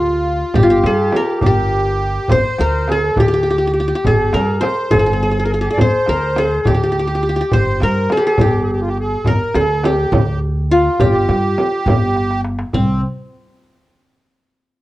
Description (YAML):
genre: Arabic maqam ensemble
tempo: 69 BPM (dotted quarters)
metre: 6/8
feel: straight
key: G maqam bayati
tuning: A4 = 439 Hz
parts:
  - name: qanun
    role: melody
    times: 0.0-13.0 s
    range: C4 to C5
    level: -17 LUFS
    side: left 1 dB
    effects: plate reverb
  - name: accordion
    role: second line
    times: 0.0-13.0 s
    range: C4 to D5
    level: -21 LUFS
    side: right 1 dB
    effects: light tremolo tuning
  - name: upright bass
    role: bass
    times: 0.0-13.0 s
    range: G1 to G2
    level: -19 LUFS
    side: equal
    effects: none
  - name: darbuka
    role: percussion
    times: 0.5-13.0 s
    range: none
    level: -21 LUFS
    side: left 1 dB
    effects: none
  - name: frame drum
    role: percussion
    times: 0.5-13.0 s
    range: none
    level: -21 LUFS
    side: right 2 dB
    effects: none
room: moderate small room reverb, RT60 0.6 s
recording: worn, warbling old tape, cassette tape, warbly pitch drift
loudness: -13 LUFS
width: side -16 dB against mid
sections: 0.0-12.7 A section; 12.7-14.5 B section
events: drum fill 12.2-12.7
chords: none